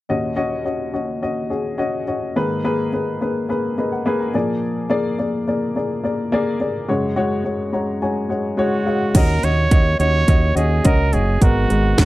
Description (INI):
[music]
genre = piano-driven pop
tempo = 106 BPM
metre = 4/4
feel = straight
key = Eb minor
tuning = A4 = 440 Hz
[part]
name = warm upright piano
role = accompaniment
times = 0.1-12.1 s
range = Eb2 to Bb5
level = -20 LUFS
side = left 2 dB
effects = none
[part]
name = brilliant trumpet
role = melody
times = 8.6-12.1 s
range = Gb4 to Db5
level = -22 LUFS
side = right 3 dB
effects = none
[part]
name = fingered electric bass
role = bass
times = 9.1-12.1 s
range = Gb1 to Eb2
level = -18 LUFS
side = right 1 dB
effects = none
[part]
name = house drum kit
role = drums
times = 9.1-12.1 s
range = crash cymbal, hi-hat, kick drum, snare drum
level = -15 LUFS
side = right 1 dB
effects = none
[sound]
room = little or no reverb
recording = dry, close 1970s-style studio recording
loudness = -17 LUFS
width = side -17 dB against mid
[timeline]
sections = 0.1-9.2 A section; 9.2-12.1 B section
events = upright piano fill 3.5-4.6, 7.5-9.2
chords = 0.1 Ebm7; 2.4 Abmadd9; 4.3 Bb7; 6.9 Gbsus2; 9.2 Ebm7; 11.4 Abmadd9